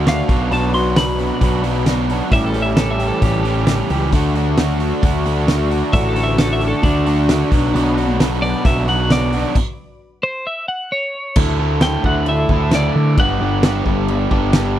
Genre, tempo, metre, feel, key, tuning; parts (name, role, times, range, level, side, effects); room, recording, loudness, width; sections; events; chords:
indie rock; 133 BPM; 4/4; straight; D major; A4 = 440 Hz
dark analog pad; sustained chords; 0.0-9.5 s; F#4 to C#6; -27 LUFS; left 2 dB; chorus
crunchy overdriven guitar; riff; 0.0-14.8 s; G2 to A4; -20 LUFS; right 1 dB
growling picked electric bass; bass; 0.0-14.8 s; G1 to D3; -19 LUFS; equal; overdrive
twelve-string electric guitar; melody; 0.1-13.8 s; D4 to C6; -22 LUFS; left 1 dB
loose indie drum kit; drums; 0.1-14.6 s; crash cymbal, hi-hat, kick drum, snare drum; -18 LUFS; equal
little or no reverb; -14 LUFS; side -12 dB against mid
0.0-11.4 A section; 11.4-14.8 B section
clean electric guitar solo 0.0-11.4; stop 9.6-11.4
0.3 Bm; 2.3 A7; 4.1 Dmaj7; 7.5 Bm; 9.6 N.C.; 11.4 Dsus2; 13.2 Gmaj7